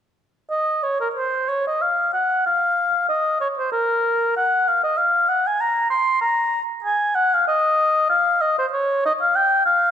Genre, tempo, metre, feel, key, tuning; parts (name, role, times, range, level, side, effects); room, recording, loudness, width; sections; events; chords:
classical, baroque-style fantasia for unaccompanied oboe; 95 BPM; 3/4; rubato; Bb minor; A4 = 440 Hz
mellow oboe; solo; 0.5-9.9 s; Bb4 to C6; -17 LUFS; left 1 dB
moderate scoring stage reverb, RT60 1.6 s; minimal, uncompressed stereo recording; -18 LUFS; side -9 dB against mid
0.5-9.9 A section